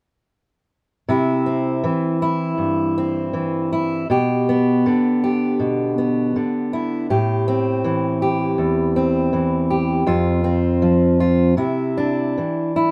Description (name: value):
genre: folk, solo fingerstyle acoustic guitar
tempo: 80 BPM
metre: 4/4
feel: rubato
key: C major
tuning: A4 = 440 Hz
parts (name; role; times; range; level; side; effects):
- fingerpicked steel-string acoustic guitar; solo; 1.1-12.9 s; E2 to G4; -19 LUFS; equal; none
room: moderate studio ambience, RT60 0.5 s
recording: band playing live in one room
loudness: -20 LUFS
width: mono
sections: 1.1-12.9 A section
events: none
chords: 1.1 C; 4.1 G/B; 7.1 Am7; 10.1 F5; 11.6 Cadd9